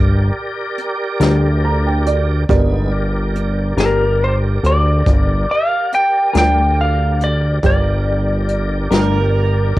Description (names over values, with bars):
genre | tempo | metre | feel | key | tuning
slow blues | 47 BPM (dotted quarters) | 12/8 | straight | G minor | A4 = 442 Hz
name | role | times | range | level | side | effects
clear upright piano | accompaniment | 0.0-9.8 s | G4 to Bb5 | -24 LUFS | right 6 dB | plate reverb
tonewheel organ | sustained chords | 0.0-9.8 s | Ab3 to D5 | -25 LUFS | right 1 dB | slow rotary speaker, overdrive, chorus vibrato
fat analog bass | bass | 0.0-9.8 s | G1 to D2 | -16 LUFS | equal | none
jazz brush drum kit | drums | 0.8-9.8 s | hi-hat, kick drum, snare drum | -19 LUFS | equal | cassette tape
semi-hollow electric guitar | accompaniment | 1.2-9.2 s | G3 to Bb4 | -21 LUFS | left 6 dB | tremolo, plate reverb
lightly driven lead guitar | melody | 3.8-9.3 s | Bb4 to G5 | -17 LUFS | equal | cassette tape, plate reverb
overdriven slide guitar | second line | 8.9-9.8 s | Bb4 | -20 LUFS | right 6 dB | none
room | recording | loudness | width
light reverb | home recording on cassette | -14 LUFS | side -17 dB against mid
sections
0.0-9.8 A section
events
upright piano fill 1.2-2.5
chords
0.0 Gm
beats
1.20 | 2.49 3.77 5.06 6.35 | 7.63 8.92